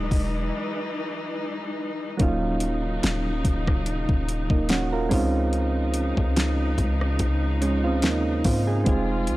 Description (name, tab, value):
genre	contemporary R&B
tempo	72 BPM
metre	4/4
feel	swing 54% on 16ths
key	Eb dorian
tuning	A4 = 436 Hz
part	soft electric-piano-like synth keys	accompaniment	0.0-9.4 s	Gb3 to D#5	-27 LUFS	right 2 dB	chorus
part	warm studio string section	sustained chords	0.0-9.4 s	C3 to F4	-31 LUFS	left 1 dB	none
part	warm 808-style bass	bass	0.0-9.4 s	Eb1 to Ab2	-26 LUFS	equal	transformer saturation
part	smooth R&B drum kit	drums	0.1-9.4 s	hi-hat, kick drum, rim click, snare drum	-24 LUFS	equal	none
room	digital ambience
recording	dry, gritty hardware recording, transformer saturation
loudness	-22 LUFS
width	side -17 dB against mid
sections	0.0-2.2 A section; 2.2-9.4 B section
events	break 0.5-2.2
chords	0.0 Emaj7; 2.2 Ebm7; 5.1 Dbmaj9; 8.9 Fm7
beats	0.53 1.36 | 2.20 3.03 3.86 4.70 | 5.53 6.36 7.20 8.03 | 8.86